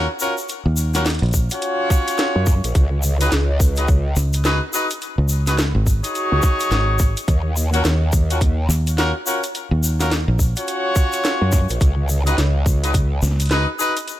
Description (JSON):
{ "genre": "glitch hop", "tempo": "106 BPM", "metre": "4/4", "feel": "swing 61% on 16ths", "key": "Eb minor", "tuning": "A4 = 444 Hz", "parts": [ { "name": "bright horn section", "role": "stabs", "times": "0.0-13.9 s", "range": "Db4 to Db5", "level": "-23 LUFS", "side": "left 1 dB", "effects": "sidechain pumping, ping-pong delay" }, { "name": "fingered electric bass", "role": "bass", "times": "0.0-13.7 s", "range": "Ab1 to Eb2", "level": "-18 LUFS", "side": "equal", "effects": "tube saturation" }, { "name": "egg shaker", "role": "percussion", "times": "0.2-14.2 s", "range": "none", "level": "-29 LUFS", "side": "left 4 dB", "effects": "none" }, { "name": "drum and bass drum kit", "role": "drums", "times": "0.5-14.2 s", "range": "hi-hat, snare drum", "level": "-25 LUFS", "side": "equal", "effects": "none" }, { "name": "electronic kick drum", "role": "drums", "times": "1.3-13.1 s", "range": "none", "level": "-16 LUFS", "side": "equal", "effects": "none" }, { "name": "growl bass", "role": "bass", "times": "2.4-13.2 s", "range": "Bb1 to Gb2", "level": "-18 LUFS", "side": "equal", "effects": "chorus, tube saturation" } ], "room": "digital ambience", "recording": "none", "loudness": "-16 LUFS", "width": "side -14 dB against mid", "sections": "0.0-14.2 A section", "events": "none", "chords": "0.0 Ebm9; 2.8 Db9sus4; 7.3 Ebm9; 11.8 Db9sus4" }